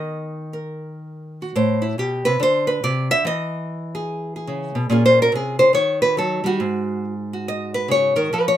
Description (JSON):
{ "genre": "solo jazz", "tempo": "142 BPM", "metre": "4/4", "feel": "swing 65% on 8ths, rubato", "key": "unclear", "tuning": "A4 = 440 Hz", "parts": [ { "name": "nylon-string guitar", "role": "solo", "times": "0.0-8.6 s", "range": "Ab2 to E5", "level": "-18 LUFS", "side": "equal", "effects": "none" } ], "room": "light reverb", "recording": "minimal, uncompressed stereo recording", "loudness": "-18 LUFS", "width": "side -11 dB against mid", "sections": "0.0-8.6 A section", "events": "nylon-string guitar solo 0.0-8.6", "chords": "0.0 Eb5; 1.5 Am; 2.4 Cmaj9; 3.2 Emaj7; 4.9 Bbm9; 5.7 Eb7alt; 6.6 Ab5" }